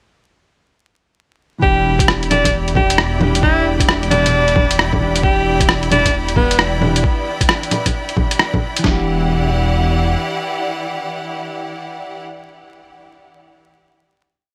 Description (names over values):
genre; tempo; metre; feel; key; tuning
future garage; 133 BPM; 4/4; swing 64% on 16ths; E minor; A4 = 437 Hz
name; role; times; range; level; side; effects
bright alto saxophone; melody; 1.6-6.6 s; B3 to G4; -21 LUFS; equal; dub echo
mellow electric guitar; accompaniment; 1.6-12.3 s; E3 to G4; -27 LUFS; equal; sidechain pumping, low-pass filter, dub echo
clear studio string section; sustained chords; 1.6-12.2 s; E3 to B5; -26 LUFS; equal; sidechain pumping
dark detuned saw bass; bass; 1.6-10.2 s; E1; -22 LUFS; equal; sidechain pumping
lo-fi sampler-style drum kit; drums; 1.6-9.0 s; kick drum, snare drum; -20 LUFS; equal; overdrive, studio reverb
wind-like tuned noise texture; texture; 2.6-7.1 s; D4 to D5; -33 LUFS; equal; none
lo-fi sampler-style drum kit; drums; 2.0-8.8 s; bongos, hi-hat, rim click; -20 LUFS; equal; overdrive, studio reverb
room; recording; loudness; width
light reverb; vinyl crackle; -16 LUFS; mono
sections
1.6-8.8 groove; 8.8-12.5 final chord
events
filter sweep on clean electric guitar 1.6-7.0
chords
1.6 Em7